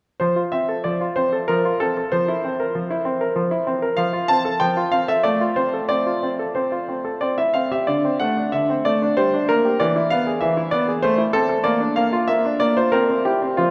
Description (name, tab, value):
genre	classical-period piano sonatina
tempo	90-98 BPM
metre	3/4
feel	rubato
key	F major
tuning	A4 = 438 Hz
part	bright concert grand piano	solo	0.2-13.7 s	D3 to A5	-20 LUFS	equal	none
room	wet cathedral reverb, RT60 6.8 s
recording	recorded in a church or concert hall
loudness	-20 LUFS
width	mono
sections	0.2-13.7 A section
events	none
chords	0.2 F; 2.1 C7/F; 4.0 F; 5.2 F/A; 5.9 F/C; 7.2 C; 7.9 D5; 9.2 Gm; 9.8 E; 11.0 Am; 11.7 Bb; 12.9 C7